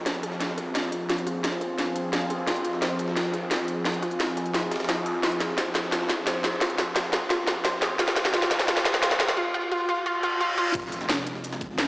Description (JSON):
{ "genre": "dark technical drum and bass", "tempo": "174 BPM", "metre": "4/4", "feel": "straight", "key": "F minor", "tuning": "A4 = 440 Hz", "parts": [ { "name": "sweeping resonant pad", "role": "sustained chords", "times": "0.0-11.9 s", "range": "F3 to Ab4", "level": "-31 LUFS", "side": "equal", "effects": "chorus, sidechain pumping" }, { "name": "snarling distorted saw bass", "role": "bass", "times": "0.0-11.9 s", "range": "Eb1 to F2", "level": "-35 LUFS", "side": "equal", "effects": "none" }, { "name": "analog pluck", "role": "arpeggios", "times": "0.1-10.7 s", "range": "F4 to F5", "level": "-30 LUFS", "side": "equal", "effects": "chorus, sidechain pumping, digital delay" }, { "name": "drum and bass drum kit", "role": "drums", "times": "0.1-11.9 s", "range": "crash cymbal, hi-hat, snare drum", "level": "-26 LUFS", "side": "equal", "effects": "none" }, { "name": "jungle sampler-style drum kit", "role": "drums", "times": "0.1-11.9 s", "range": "ride cymbal, snare drum", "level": "-36 LUFS", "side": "equal", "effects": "none" }, { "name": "reverse cymbal and impact", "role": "sound effects", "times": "10.2-11.9 s", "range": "none", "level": "-30 LUFS", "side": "equal", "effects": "none" }, { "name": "electronic kick drum", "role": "drums", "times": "10.7-11.7 s", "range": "none", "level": "-38 LUFS", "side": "equal", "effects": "none" }, { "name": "pulsing pluck wobble bass", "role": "bass", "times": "11.1-11.8 s", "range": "F1 to Ab1", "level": "-36 LUFS", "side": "equal", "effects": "chorus" } ], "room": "wet lush hall reverb, RT60 1.8 s, digital ambience", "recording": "played on a big sound system in a bare room, large studio reverb, high-pass filter, small speaker sound", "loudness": "-23 LUFS", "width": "side -23 dB against mid", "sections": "0.0-10.7 A section; 10.7-11.9 B section", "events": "build-up 0.0-10.7; drum fill 0.0-9.4; filter sweep on synth arpeggio sound 0.0-10.7; break 9.4-10.7; reverse cymbal 10.2-10.7; drop 10.7-11.9; impact 10.7-11.9", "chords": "0.0 Fm", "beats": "0.06 0.40 0.75 | 1.09 1.44 1.78 2.13 | 2.47 2.82 3.16 3.51 | 3.85 4.20 4.54 4.89 | 5.23 5.58 5.92 6.27 | 6.61 6.96 7.30 7.65 | 7.99 8.34 8.68 9.03 | 9.37 9.71 10.06 10.40 | 10.75 11.09 11.44 11.78" }